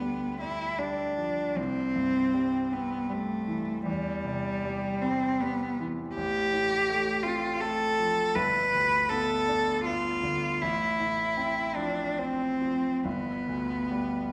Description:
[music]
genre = classical, romantic duo for cello and grand piano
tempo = 63-83 BPM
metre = 3/4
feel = rubato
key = C major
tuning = A4 = 440 Hz
[part]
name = clear cello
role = melody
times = 0.0-14.3 s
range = G3 to B4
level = -30 LUFS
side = equal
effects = none
[part]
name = bright grand piano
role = accompaniment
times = 0.0-14.3 s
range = G1 to D4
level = -36 LUFS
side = equal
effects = none
[sound]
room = wet recital hall reverb, RT60 1.4 s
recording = recorded in a church or concert hall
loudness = -29 LUFS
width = mono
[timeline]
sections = 0.0-14.3 A section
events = none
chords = 0.0 G7/D; 1.6 C; 3.9 C/E; 6.2 F/A; 8.4 G; 10.6 F/A; 13.1 G

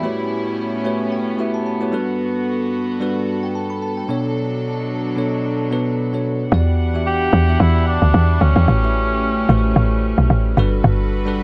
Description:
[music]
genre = amapiano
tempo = 111 BPM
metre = 4/4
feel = swing 55% on 16ths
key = E dorian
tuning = A4 = 440 Hz
[part]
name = bell-like tine electric piano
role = accompaniment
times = 0.0-11.4 s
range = B2 to B5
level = -25 LUFS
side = equal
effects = none
[part]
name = warm studio string section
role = sustained chords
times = 0.0-11.4 s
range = G2 to F#5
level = -27 LUFS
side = equal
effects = none
[part]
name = woody log drum bass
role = bass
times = 6.5-11.4 s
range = G1 to E2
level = -18 LUFS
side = equal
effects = none
[part]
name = mellow cor anglais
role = melody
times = 7.1-10.0 s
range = C#4 to G4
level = -25 LUFS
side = equal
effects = tape echo
[sound]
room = light reverb, studio ambience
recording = echo-heavy mix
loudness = -18 LUFS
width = mono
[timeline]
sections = 0.0-6.5 A section; 6.5-11.4 B section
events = tine electric piano fill 0.6-2.2; drop 6.5-11.4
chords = 0.0 A13; 1.9 Gmaj9; 4.1 Bm7; 6.5 Em9; 8.7 A13; 10.6 Gmaj9

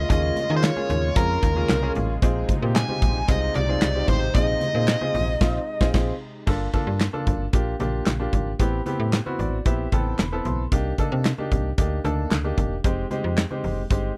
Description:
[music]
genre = early-eighties boogie funk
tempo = 113 BPM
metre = 4/4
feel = straight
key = unclear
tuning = A4 = 438 Hz
[part]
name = nasal lead guitar with a parked wah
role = melody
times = 0.0-5.9 s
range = Bb4 to Ab5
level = -28 LUFS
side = equal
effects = overdrive, slapback echo
[part]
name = brassy analog pad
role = sustained chords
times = 0.0-6.4 s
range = C3 to F4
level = -35 LUFS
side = equal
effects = chorus
[part]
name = slap-like FM bass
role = bass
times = 0.0-14.1 s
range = E1 to Eb3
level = -28 LUFS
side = equal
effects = none
[part]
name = clear baby grand piano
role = accompaniment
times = 0.1-14.1 s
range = Ab3 to C6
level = -31 LUFS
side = equal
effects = none
[part]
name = modern studio drum kit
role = drums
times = 0.1-14.0 s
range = crash cymbal, handclaps, hi-hat, kick drum, snare drum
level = -25 LUFS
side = equal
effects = none
[part]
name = congas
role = percussion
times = 0.1-14.0 s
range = none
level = -36 LUFS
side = equal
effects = none
[sound]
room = little or no reverb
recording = dry, close 1970s-style studio recording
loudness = -23 LUFS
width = mono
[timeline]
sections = 0.0-6.5 A section; 6.5-14.2 B section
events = band accent 5.4-6.5; grand piano fill 9.1-10.7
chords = 0.0 Eb9sus4; 2.2 Bb9sus4; 6.5 Gm9; 8.6 Am9; 10.7 Cm9; 12.8 Fm9

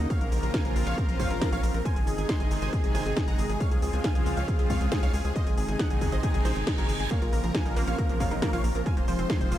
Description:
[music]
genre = uplifting trance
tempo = 137 BPM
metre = 4/4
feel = straight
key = Bb minor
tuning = A4 = 440 Hz
[part]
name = big supersaw lead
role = melody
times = 0.0-9.6 s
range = Gb4 to C6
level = -37 LUFS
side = right 1 dB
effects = phaser, sidechain pumping, diffuse ambient delay
[part]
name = analog pluck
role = second line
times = 0.0-9.6 s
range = Ab4 to C6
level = -37 LUFS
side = left 1 dB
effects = chorus, sidechain pumping, diffuse ambient delay
[part]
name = lush unison pad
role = sustained chords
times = 0.0-9.6 s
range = C3 to Ab4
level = -32 LUFS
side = equal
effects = chorus, sidechain pumping
[part]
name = tight sequencer bass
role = bass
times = 0.0-9.6 s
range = F1 to Db2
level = -30 LUFS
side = equal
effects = sidechain pumping
[part]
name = electronic kick drum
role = drums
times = 0.1-9.4 s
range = none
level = -27 LUFS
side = equal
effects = none
[part]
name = techno drum kit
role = drums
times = 0.1-9.6 s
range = hi-hat, shaker, snare drum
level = -35 LUFS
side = equal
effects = none
[part]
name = reverse cymbal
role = sound effects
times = 6.4-7.1 s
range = none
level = -37 LUFS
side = right 4 dB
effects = none
[part]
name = analog pluck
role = arpeggios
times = 7.1-9.6 s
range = C3 to Bb4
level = -34 LUFS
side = right 2 dB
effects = chorus, sidechain pumping, diffuse ambient delay
[sound]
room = light reverb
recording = none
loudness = -24 LUFS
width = side -12 dB against mid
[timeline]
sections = 0.0-9.6 A section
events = reverse cymbal 6.4-7.1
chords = 0.1 Bbmadd9; 1.9 Ab; 3.6 Dbmaj7; 5.4 Ab; 7.1 Bbmadd9; 8.9 Fm7

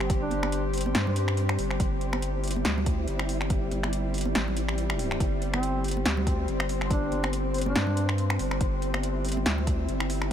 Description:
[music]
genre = deep dubstep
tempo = 141 BPM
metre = 4/4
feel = swing 56% on 16ths, half-time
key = unclear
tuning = A4 = 439 Hz
[part]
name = bowed-like drone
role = sustained chords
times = 0.0-10.3 s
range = G3 to G4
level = -33 LUFS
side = left 1 dB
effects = built-in reverb
[part]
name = saturated sub bass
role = bass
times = 0.0-10.3 s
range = G1 to G2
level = -29 LUFS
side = equal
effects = none
[part]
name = deep house drum kit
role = drums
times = 0.0-10.3 s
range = finger snaps, hi-hat, snare drum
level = -31 LUFS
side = equal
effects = overdrive
[part]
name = flickering grainy texture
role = texture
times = 0.0-10.3 s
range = C4 to C5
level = -35 LUFS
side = equal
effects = built-in reverb
[part]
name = electronic kick drum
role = drums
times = 0.1-9.8 s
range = none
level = -28 LUFS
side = equal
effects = overdrive
[part]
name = mellow duduk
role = melody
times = 0.2-0.6, 5.5-8.1 s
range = C4 to D4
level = -36 LUFS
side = right 1 dB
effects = dub echo
[part]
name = congas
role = percussion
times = 0.3-9.7 s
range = none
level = -38 LUFS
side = right 3 dB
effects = none
[sound]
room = light reverb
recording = none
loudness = -25 LUFS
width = side -9 dB against mid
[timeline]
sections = 0.0-10.3 A section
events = none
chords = 0.0 G5

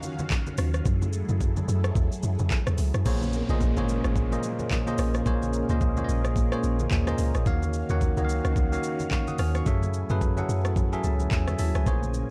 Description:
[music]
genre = amapiano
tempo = 109 BPM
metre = 4/4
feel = swing 58% on 16ths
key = Bb minor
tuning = A4 = 441 Hz
[part]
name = string machine, cellos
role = sustained chords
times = 0.0-12.3 s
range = Eb3 to Ab5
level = -37 LUFS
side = equal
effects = phaser, ensemble chorus
[part]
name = smooth R&B drum kit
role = drums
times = 0.0-12.3 s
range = crash cymbal, handclaps, hi-hat, kick drum, rim click, shaker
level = -31 LUFS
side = equal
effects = overdrive
[part]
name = congas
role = percussion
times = 0.0-12.1 s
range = none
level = -38 LUFS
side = equal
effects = none
[part]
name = deep log drum bass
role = bass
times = 0.6-12.2 s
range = Ab1 to Gb2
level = -29 LUFS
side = equal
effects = none
[part]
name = bell-like tine electric piano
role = accompaniment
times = 3.1-12.3 s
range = Bb2 to F6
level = -31 LUFS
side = equal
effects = none
[part]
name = downlifter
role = sound effects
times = 3.1-7.5 s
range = none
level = -42 LUFS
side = equal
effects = none
[sound]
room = digital ambience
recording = dark, warm production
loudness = -26 LUFS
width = mono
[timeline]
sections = 0.0-3.1 A section; 3.1-12.3 B section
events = drop 0.0-3.1; tine electric piano fill 10.8-11.9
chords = 0.0 Ebm9; 0.9 Gbm9; 3.1 Bbm9; 7.5 Ebm9; 9.7 Gbm9

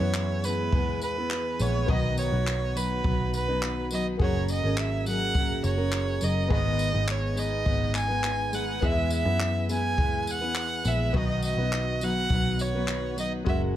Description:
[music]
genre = acoustic pop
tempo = 104 BPM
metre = 4/4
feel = straight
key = unclear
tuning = A4 = 440 Hz
[part]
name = rich violin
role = melody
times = 0.0-13.6 s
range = B4 to G#5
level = -30 LUFS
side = right 2 dB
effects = plate reverb, ping-pong delay
[part]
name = fingerpicked steel-string acoustic guitar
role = accompaniment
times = 0.0-13.8 s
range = G#2 to B4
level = -31 LUFS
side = left 2 dB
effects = plate reverb
[part]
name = warm upright piano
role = accompaniment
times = 0.0-13.8 s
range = G#3 to F#5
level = -40 LUFS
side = left 6 dB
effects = none
[part]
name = mellow tonewheel organ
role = sustained chords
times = 0.0-13.8 s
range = D#3 to G#4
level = -37 LUFS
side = right 1 dB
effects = slow rotary speaker, plate reverb
[part]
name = vintage muted picked electric bass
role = bass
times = 0.0-13.8 s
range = F#1 to F#2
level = -29 LUFS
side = equal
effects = none
[part]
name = jazz brush drum kit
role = drums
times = 0.1-13.6 s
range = handclaps, kick drum, tambourine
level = -30 LUFS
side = equal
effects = none
[sound]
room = light reverb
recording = none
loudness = -24 LUFS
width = side -12 dB against mid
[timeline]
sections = 0.0-13.8 A section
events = none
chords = 0.0 E; 1.9 B; 4.2 F#add9; 6.5 G#m; 8.8 E; 11.1 B

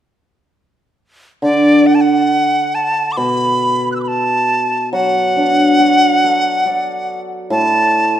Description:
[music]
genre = chinese traditional, Chinese chamber ensemble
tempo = 70 BPM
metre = 4/4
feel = straight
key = D gong mode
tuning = A4 = 440 Hz
[part]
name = bright dizi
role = melody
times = 1.4-8.2 s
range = D5 to F#6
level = -14 LUFS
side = equal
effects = none
[part]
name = hammered dulcimer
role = accompaniment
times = 1.4-8.2 s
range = A2 to D5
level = -16 LUFS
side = equal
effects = none
[sound]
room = moderate concert hall reverb, RT60 1.9 s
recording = minimal, uncompressed stereo recording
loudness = -12 LUFS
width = side -11 dB against mid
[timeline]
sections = 1.4-8.2 A section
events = none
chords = none

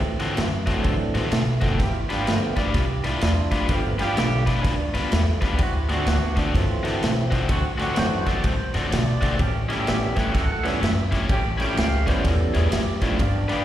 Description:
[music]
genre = electric blues shuffle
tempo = 126 BPM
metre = 4/4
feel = swing 63% on 8ths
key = D mixolydian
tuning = A4 = 440 Hz
[part]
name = percussive tonewheel organ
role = accompaniment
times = 0.0-13.6 s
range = D3 to G5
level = -29 LUFS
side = right 3 dB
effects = slow rotary speaker, overdrive, slapback echo
[part]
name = upright bass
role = bass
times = 0.0-13.5 s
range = F#1 to D3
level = -25 LUFS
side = equal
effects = none
[part]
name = crunchy overdriven guitar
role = riff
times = 0.2-13.6 s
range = A2 to B4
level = -27 LUFS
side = left 4 dB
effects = slapback echo
[part]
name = raw garage drum kit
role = drums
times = 0.2-13.6 s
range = kick drum, ride cymbal, snare drum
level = -25 LUFS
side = equal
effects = none
[part]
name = dark horn section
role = stabs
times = 1.8-13.6 s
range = A3 to G4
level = -30 LUFS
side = right 1 dB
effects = slapback echo
[sound]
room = studio reverb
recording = live gig heard through the venue's PA, recital hall reverb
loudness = -20 LUFS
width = side -12 dB against mid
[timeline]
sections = 0.0-13.6 A section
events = none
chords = 0.0 D7; 1.8 G7; 5.6 D7; 9.4 A7

